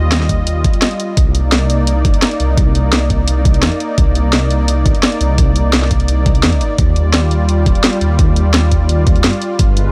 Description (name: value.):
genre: liquid drum and bass.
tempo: 171 BPM.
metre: 4/4.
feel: straight.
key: unclear.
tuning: A4 = 439 Hz.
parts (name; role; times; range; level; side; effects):
warm analog pad; sustained chords; 0.0-9.9 s; G3 to Eb5; -22 LUFS; equal; chorus, sidechain pumping.
dark detuned saw bass; bass; 0.0-9.9 s; Eb1 to G2; -17 LUFS; equal; none.
drum and bass drum kit; drums; 0.1-9.8 s; hi-hat, snare drum; -18 LUFS; equal; small room ambience.
electronic kick drum; drums; 0.3-9.7 s; none; -17 LUFS; equal; overdrive, small room ambience.
room: little or no reverb.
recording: none.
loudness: -13 LUFS.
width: mono.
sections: 0.0-9.9 A section.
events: none.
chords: 0.0 Ebadd9; 1.2 Cm9; 6.8 Ebmaj9.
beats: 0.12 0.47 0.82 | 1.17 1.52 1.87 2.23 | 2.58 2.93 3.28 3.63 | 3.98 4.33 4.68 5.03 | 5.38 5.73 6.08 6.44 | 6.79 7.14 7.49 7.84 | 8.19 8.54 8.89 9.24 | 9.59.